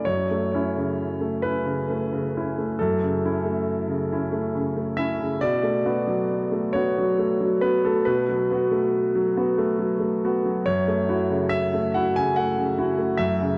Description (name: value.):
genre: neoclassical minimalist piano.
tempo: 63-71 BPM.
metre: 3/4.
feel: rubato.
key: F# minor.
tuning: A4 = 441 Hz.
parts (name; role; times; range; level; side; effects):
clear concert grand piano; solo; 0.0-13.6 s; F#2 to G#5; -24 LUFS; equal; analog delay.
room: wet plate reverb, RT60 3.2 s.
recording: dreamy mix soaked in reverb.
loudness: -24 LUFS.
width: mono.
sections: 0.0-13.6 A section.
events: none.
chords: 0.0 F#m7; 5.4 Bm7; 10.6 F#m7.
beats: | 0.04 0.97 1.88 | 2.77 3.64 4.52 | 5.41 6.30 7.18 | 8.07 8.94 9.79 | 10.64 11.49 12.35 | 13.20.